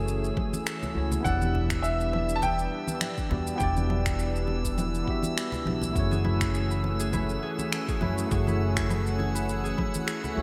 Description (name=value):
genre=sunset chillout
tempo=102 BPM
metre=4/4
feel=swing 55% on 16ths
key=unclear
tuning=A4 = 440 Hz
part: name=tine electric piano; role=accompaniment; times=0.0-10.4 s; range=A3 to E5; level=-35 LUFS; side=equal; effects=medium tremolo, delay
part: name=lush unison pad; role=sustained chords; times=0.0-10.4 s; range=E3 to F#5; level=-37 LUFS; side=equal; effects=chorus
part: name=upright bass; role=bass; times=0.0-10.4 s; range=E1 to F#2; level=-31 LUFS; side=equal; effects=none
part: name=drifting glass-harmonics texture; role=texture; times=0.0-10.4 s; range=E6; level=-42 LUFS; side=equal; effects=chorus, built-in reverb
part: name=electronic shaker, congas and finger snaps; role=drums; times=0.1-10.3 s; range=none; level=-36 LUFS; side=equal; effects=gated reverb
part: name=electronic kick drum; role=drums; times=0.4-9.9 s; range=none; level=-35 LUFS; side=equal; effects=none
part: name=congas and bongos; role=percussion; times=0.5-10.3 s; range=none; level=-39 LUFS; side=equal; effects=none
part: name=bright grand piano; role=melody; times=1.2-4.1 s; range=E5 to A5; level=-34 LUFS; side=equal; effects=delay
part: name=concert harp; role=arpeggios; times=6.1-10.4 s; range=E4 to G#4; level=-39 LUFS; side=equal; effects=delay
room=moderate lush hall reverb, RT60 2.3 s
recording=bright 1980s-style digital production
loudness=-28 LUFS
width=mono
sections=0.0-10.4 A section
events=none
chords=0.0 F#m9; 1.2 Em9; 6.0 F#m9